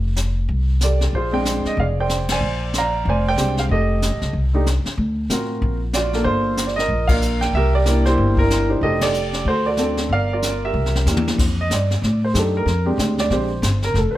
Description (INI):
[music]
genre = jazz piano trio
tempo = 187 BPM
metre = 4/4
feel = swing 61% on 8ths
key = unclear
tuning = A4 = 440 Hz
[part]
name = upright bass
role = bass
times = 0.0-14.2 s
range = F1 to A2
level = -20 LUFS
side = equal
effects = none
[part]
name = jazz brush drum kit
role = drums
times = 0.2-14.2 s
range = brushed snare drum, crash cymbal, hi-hat, kick drum, ride cymbal, snare drum, toms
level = -24 LUFS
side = left 1 dB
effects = none
[part]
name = warm grand piano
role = melody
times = 0.8-14.2 s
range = Ab3 to Bb5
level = -20 LUFS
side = right 2 dB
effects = plate reverb
[sound]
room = light reverb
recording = none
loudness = -17 LUFS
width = side -14 dB against mid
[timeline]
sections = 0.0-11.4 A section; 11.4-14.2 B section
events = band accent 2.3, 7.1, 9.0; drum fill 10.7-11.4; grand piano solo 11.4-14.2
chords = 0.0 F69; 1.1 Bb13; 3.7 F9; 5.0 D7alt; 6.3 Gm7; 7.5 C9; 8.8 F13; 9.5 D7; 10.1 Gm7; 10.7 C7; 11.4 F13; 12.7 Bb13